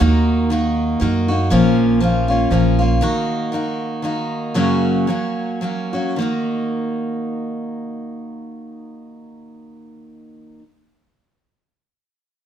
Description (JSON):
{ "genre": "acoustic folk duo or small band", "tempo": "105-120 BPM", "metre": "3/4", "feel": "swing 56% on 8ths", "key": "Eb minor", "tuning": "A4 = 439 Hz", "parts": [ { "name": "picked steel-string acoustic guitar", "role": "accompaniment", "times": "0.0-10.6 s", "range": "Gb2 to Gb4", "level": "-18 LUFS", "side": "equal", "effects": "none" }, { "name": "upright bass", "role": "bass", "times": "0.0-3.0 s", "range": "Bb1 to Gb2", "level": "-19 LUFS", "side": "right 1 dB", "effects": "none" } ], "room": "light reverb", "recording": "none", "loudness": "-16 LUFS", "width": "side -9 dB against mid", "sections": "0.0-6.2 A section; 6.2-9.6 B section", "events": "slowing down 3.0-6.2", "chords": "0.0 Ebm; 1.5 Bbm; 3.0 Ebm; 4.5 Gb; 6.2 Ebm" }